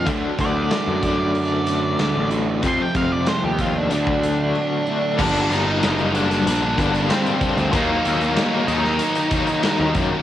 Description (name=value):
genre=quiet-loud alternative rock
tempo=94 BPM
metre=4/4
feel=straight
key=G harmonic minor from 5.2 s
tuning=A4 = 440 Hz
part: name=octave-fuzz lead guitar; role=melody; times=0.0-9.9 s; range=Bb3 to C6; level=-24 LUFS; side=equal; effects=distortion, cassette tape
part: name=picked steel-string acoustic guitar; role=arpeggios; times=0.0-5.2 s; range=F2 to F#4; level=-30 LUFS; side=right 5 dB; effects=none
part: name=overdriven electric guitar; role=riff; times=0.0-10.2 s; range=F2 to Eb4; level=-25 LUFS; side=left 7 dB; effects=tremolo, cassette tape
part: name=thick fuzz guitar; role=riff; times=0.0-5.2 s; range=F2 to D4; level=-26 LUFS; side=right 7 dB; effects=distortion, cassette tape
part: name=fuzz picked electric bass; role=bass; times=0.0-10.1 s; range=F#1 to F#2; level=-23 LUFS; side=equal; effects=overdrive
part: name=big rock drum kit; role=drums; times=0.1-10.1 s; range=crash cymbal, hi-hat, kick drum, snare drum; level=-26 LUFS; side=equal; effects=cassette tape
part: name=high-gain distorted guitar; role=riff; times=5.2-10.2 s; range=G2 to Eb4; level=-23 LUFS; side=right 1 dB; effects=distortion, cassette tape
room=light reverb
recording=home recording on cassette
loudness=-18 LUFS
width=side -12 dB against mid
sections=0.0-5.2 A section; 5.2-10.2 B section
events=lead electric guitar solo 0.0-5.2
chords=0.1 D; 2.6 F; 3.9 D; 5.2 Gm; 7.7 Ebm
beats=| 0.07 0.71 1.35 1.99 | 2.63 3.27 3.91 4.55 | 5.19 5.83 6.46 7.10 | 7.74 8.38 9.01 9.65